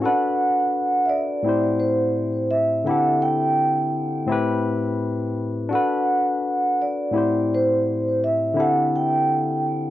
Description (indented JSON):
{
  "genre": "reggae",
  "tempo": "84 BPM",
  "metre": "4/4",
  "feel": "swing 55% on 16ths",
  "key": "A dorian",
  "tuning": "A4 = 436 Hz",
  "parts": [
    { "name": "barky tine electric piano", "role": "accompaniment", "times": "0.0-9.9 s", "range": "A2 to C5", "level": "-23 LUFS", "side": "left 3 dB", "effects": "none" },
    { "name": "vibraphone with soft mallets", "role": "melody", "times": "0.1-9.6 s", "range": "C5 to G5", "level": "-21 LUFS", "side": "right 2 dB", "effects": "tape echo" }
  ],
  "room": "moderate booth ambience, RT60 0.3 s",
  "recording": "dry, close 1970s-style studio recording",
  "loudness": "-19 LUFS",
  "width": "side -14 dB against mid",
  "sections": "0.0-9.9 A section",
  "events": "none",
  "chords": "0.0 Bm7; 1.4 Am7; 2.9 D7sus4; 4.3 Am9; 5.7 Bm7; 7.1 Am7; 8.6 D7sus4"
}